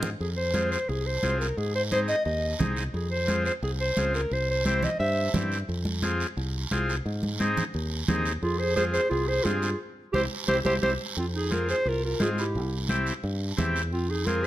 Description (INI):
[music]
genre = latin, cumbia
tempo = 175 BPM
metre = 4/4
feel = straight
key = F minor, F harmonic minor from 11.2 s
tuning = A4 = 440 Hz
[part]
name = combo organ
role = accompaniment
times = 0.0-14.5 s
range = C4 to Ab4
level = -32 LUFS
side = left 1 dB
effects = none
[part]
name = fingered electric bass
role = bass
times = 0.0-14.5 s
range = C2 to Ab2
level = -30 LUFS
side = equal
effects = none
[part]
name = congas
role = percussion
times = 0.0-14.4 s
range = none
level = -31 LUFS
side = right 1 dB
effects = none
[part]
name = guiro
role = percussion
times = 0.0-14.5 s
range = none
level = -38 LUFS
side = right 6 dB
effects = none
[part]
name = warm clarinet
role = melody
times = 0.2-5.3, 8.4-14.5 s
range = F4 to E5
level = -28 LUFS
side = equal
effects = none
[part]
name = breathy clarinet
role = second line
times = 5.0-5.3, 8.4-14.5 s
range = C4 to C5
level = -32 LUFS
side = right 3 dB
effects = none
[sound]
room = moderate large studio reverb, RT60 1.4 s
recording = close, detailed microphones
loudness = -24 LUFS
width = side -14 dB against mid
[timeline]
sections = 0.2-11.2 A section; 11.2-14.5 B section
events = drum fill 0.0; band accent 9.8-11.2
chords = 0.2 Fm; 1.6 Ab; 2.9 Fm; 4.3 C; 5.7 Fm; 7.1 Ab; 8.4 Fm; 9.8 C; 11.2 Fm; 12.6 C; 13.9 Fm